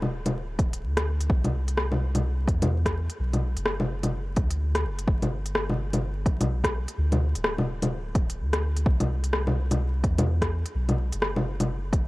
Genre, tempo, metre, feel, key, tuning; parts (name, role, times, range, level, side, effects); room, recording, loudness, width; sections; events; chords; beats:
future garage; 127 BPM; 4/4; swing 61% on 16ths; A4 = 440 Hz
soft dub sub bass; bass; 0.0-12.1 s; D1 to E2; -27 LUFS; equal; sidechain pumping
organic electronic drum kit; drums; 0.0-12.0 s; bongos, hi-hat, rim click; -27 LUFS; equal; overdrive
electronic kick drum; drums; 0.6-12.0 s; -25 LUFS; equal; overdrive
little or no reverb; vinyl crackle; -24 LUFS; side -20 dB against mid
0.0-12.1 A section
0.36 0.83 | 1.30 1.78 2.25 2.72 | 3.19 3.67 4.14 4.61 | 5.08 5.56 6.03 6.50 | 6.97 7.45 7.92 8.39 | 8.86 9.34 9.81 10.28 | 10.75 11.22 11.70